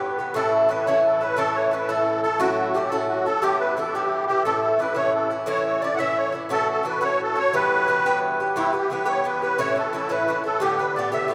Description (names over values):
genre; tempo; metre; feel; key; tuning
celtic folk, Celtic jig; 117 BPM (dotted quarters); 6/8; straight; unclear; A4 = 440 Hz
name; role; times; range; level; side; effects
Irish bouzouki; accompaniment; 0.0-11.3 s; G2 to G4; -26 LUFS; equal; none
musette accordion; melody; 0.4-11.3 s; E4 to F#5; -25 LUFS; equal; none
room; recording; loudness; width
wet cathedral reverb, RT60 5.0 s; recorded in a church or concert hall; -22 LUFS; mono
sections
0.4-8.6 A section; 8.6-11.3 B section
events
none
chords
0.4 A; 2.4 F#m7; 3.4 Em/G; 4.5 A; 6.5 F#m7; 7.5 Em/G; 9.6 A; 10.6 Gadd9